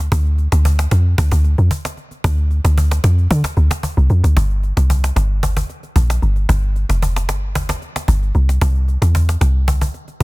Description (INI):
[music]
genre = amapiano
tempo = 113 BPM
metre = 4/4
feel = straight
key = unclear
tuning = A4 = 441 Hz
[part]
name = deep log drum bass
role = bass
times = 0.0-10.2 s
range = F1 to D3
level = -14 LUFS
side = equal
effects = none
[part]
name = cajon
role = drums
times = 0.1-10.2 s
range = none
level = -23 LUFS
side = equal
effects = none
[sound]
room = small room ambience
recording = dense, heavily limited modern master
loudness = -14 LUFS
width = side -22 dB against mid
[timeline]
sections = 0.0-4.4 A section; 4.4-10.2 B section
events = drop 0.0-4.4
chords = none